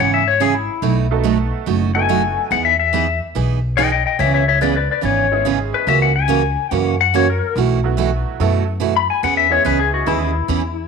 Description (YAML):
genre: country, western swing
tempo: 143 BPM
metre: 4/4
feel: swing 67% on 8ths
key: E major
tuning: A4 = 440 Hz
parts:
  - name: clean lap steel guitar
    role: second line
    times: 0.0-10.9 s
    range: E4 to B5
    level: -17 LUFS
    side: left 10 dB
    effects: none
  - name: picked steel-string acoustic guitar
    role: accompaniment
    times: 0.0-10.6 s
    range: B2 to G#4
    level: -21 LUFS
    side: right 13 dB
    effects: none
  - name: upright bass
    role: bass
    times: 0.0-10.8 s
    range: F#1 to F#2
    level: -20 LUFS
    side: equal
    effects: none
  - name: honky-tonk upright piano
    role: accompaniment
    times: 1.1-2.5, 5.3-10.3 s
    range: F#3 to A4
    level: -24 LUFS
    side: right 13 dB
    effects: none
room: moderate echo chamber reverb, RT60 1.4 s, small room ambience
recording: 1960s-style stereo with parts hard left and right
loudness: -15 LUFS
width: side -5 dB against mid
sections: 0.0-10.9 A section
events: electric slide guitar solo 0.0-10.9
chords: 0.0 C#m7; 0.8 B7; 2.5 Emaj7; 4.2 C#m7; 5.9 F#7/C#; 7.6 B7sus4; 9.2 E6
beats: 0.41 | 0.83 1.25 1.68 2.10 | 2.52 2.94 3.36 3.78 | 4.20 4.62 5.04 5.46 | 5.88 6.30 6.71 7.13 | 7.55 7.97 8.39 8.81 | 9.23 9.65 10.07 10.49